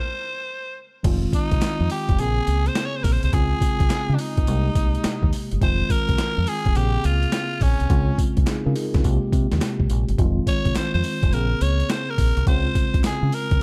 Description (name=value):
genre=R&B, new jack swing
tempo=105 BPM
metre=4/4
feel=swing 65% on 16ths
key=F minor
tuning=A4 = 440 Hz
part: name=raspy tenor saxophone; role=melody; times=0.0-13.6 s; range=Db4 to Db5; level=-29 LUFS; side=equal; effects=none
part: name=mellow tine electric piano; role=accompaniment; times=1.0-13.6 s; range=C3 to Bb4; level=-29 LUFS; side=equal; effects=none
part: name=deep dub fingered electric bass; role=bass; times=1.0-13.6 s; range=F1 to Db3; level=-24 LUFS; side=equal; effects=none
part: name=boom bap sampler-style drum kit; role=drums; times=1.0-13.6 s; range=crash cymbal, hi-hat, kick drum, snare drum, tambourine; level=-25 LUFS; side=equal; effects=none
part: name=group handclap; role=percussion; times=1.6-13.2 s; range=none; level=-46 LUFS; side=equal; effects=none
room=digital ambience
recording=dark, warm production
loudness=-21 LUFS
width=mono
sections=0.0-1.0 A section; 1.0-13.6 B section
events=stop 0.0-1.0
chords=0.0 N.C.; 1.0 Fm7; 2.2 Bbm9; 3.3 Dbmaj7; 4.5 Abmaj9/C; 5.6 Fm7; 6.8 Bbm9; 7.9 Dbmaj7; 9.0 Abmaj9/C; 10.2 Fm7; 11.3 Bbm9; 12.5 Dbmaj7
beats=0.47 | 1.04 1.61 2.19 2.76 | 3.33 3.90 4.47 5.04 | 5.61 6.18 6.76 7.33 | 7.90 8.47 9.04 9.61 | 10.19 10.76 11.33 11.90 | 12.47 13.04 13.61